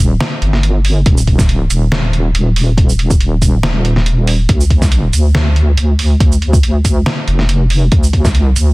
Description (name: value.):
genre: deep dubstep.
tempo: 140 BPM.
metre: 4/4.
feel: swing 53% on 16ths, half-time.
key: D phrygian.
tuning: A4 = 441 Hz.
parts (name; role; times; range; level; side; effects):
deep soft wobble bass; bass; 0.0-8.7 s; Eb1 to D2; -12 LUFS; equal; chorus, tube saturation.
trip hop sampler-style drum kit; drums; 0.2-8.7 s; hi-hat, shaker, snare drum; -18 LUFS; right 1 dB; none.
electronic kick drum; drums; 1.1-8.3 s; none; -12 LUFS; equal; none.
room: little or no reverb.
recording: dense, heavily limited modern master.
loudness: -10 LUFS.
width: side -23 dB against mid.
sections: 0.0-8.7 A section.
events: none.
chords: none.